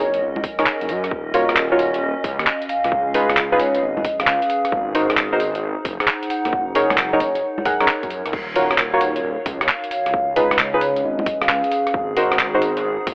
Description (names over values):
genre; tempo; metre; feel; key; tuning
UK garage, two-step garage; 133 BPM; 4/4; swing 67% on 16ths; unclear; A4 = 440 Hz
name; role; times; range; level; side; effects
vibraphone with medium mallets; melody; 0.0-12.0 s; Db5 to Gb5; -22 LUFS; equal; tape echo
dark detuned saw bass; bass; 0.0-13.1 s; Eb1 to Ab2; -27 LUFS; equal; sidechain pumping
warbly tape-like pad; texture; 0.0-13.1 s; Db4 to Gb5; -26 LUFS; equal; chorus, built-in reverb, sidechain pumping
breakbeat sampler-style drum kit; drums; 0.1-13.1 s; congas, crash cymbal, handclaps, hi-hat, rim click; -21 LUFS; equal; none
electronic kick drum; drums; 0.4-13.1 s; none; -27 LUFS; equal; none
deep mellow chord stab; stabs; 0.6-12.6 s; Eb4 to Gb5; -19 LUFS; equal; chorus, tape echo
room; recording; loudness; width
moderate lush hall reverb, RT60 1.7 s; telephone sound; -17 LUFS; side -28 dB against mid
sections
0.0-13.1 A section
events
none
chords
0.0 Gb6; 1.1 Ebm9; 2.7 Db7; 4.7 Ab7; 6.5 Gb6; 8.3 Ebm9; 9.9 Db7; 11.9 Ab7